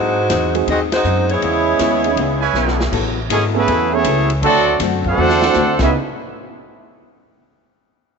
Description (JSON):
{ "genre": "jazz, big band swing", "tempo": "160 BPM", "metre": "4/4", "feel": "swing 66% on 8ths", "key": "C# minor", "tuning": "A4 = 440 Hz", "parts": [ { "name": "bright saxophone section", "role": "melody", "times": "0.0-2.6 s", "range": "G#3 to D#5", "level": "-18 LUFS", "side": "equal", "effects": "tape echo" }, { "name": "archtop guitar, miked and amplified", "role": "accompaniment", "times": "0.0-5.9 s", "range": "G#2 to A4", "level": "-23 LUFS", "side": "left 13 dB", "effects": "none" }, { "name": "upright bass", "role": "bass", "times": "0.0-5.9 s", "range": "G#1 to G#2", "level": "-22 LUFS", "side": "equal", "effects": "none" }, { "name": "swinging big-band drum kit", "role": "drums", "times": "0.3-5.9 s", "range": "crash cymbal, hi-hat, kick drum, ride cymbal, snare drum", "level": "-26 LUFS", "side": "equal", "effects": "none" }, { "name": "warm baby grand piano", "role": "accompaniment", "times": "0.5-5.9 s", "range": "G#3 to G#4", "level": "-24 LUFS", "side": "right 12 dB", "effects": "none" }, { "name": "muted trombone section", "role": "second line", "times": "1.3-5.9 s", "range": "C#3 to F#4", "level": "-21 LUFS", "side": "right 10 dB", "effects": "none" }, { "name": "warm trumpet section", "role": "stabs", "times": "2.4-2.9 s", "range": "E4 to G#5", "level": "-22 LUFS", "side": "right 8 dB", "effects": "none" }, { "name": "clear trumpet section", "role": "melody", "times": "3.3-5.9 s", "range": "A3 to F#5", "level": "-17 LUFS", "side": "equal", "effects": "none" } ], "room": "moderate echo chamber reverb, RT60 2.2 s", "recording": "1960s-style stereo with parts hard left and right, nothing above 7.8 kHz", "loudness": "-14 LUFS", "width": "side -5 dB against mid", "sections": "0.0-2.9 A section; 2.9-5.9 B section; 5.9-7.4 C section", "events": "band accent 0.9; drum fill 2.5-2.9, 5.2-5.5", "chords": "0.0 G#7; 1.4 C#m7; 2.9 F#m11; 4.4 D7; 5.7 C#m7; 5.9 N.C." }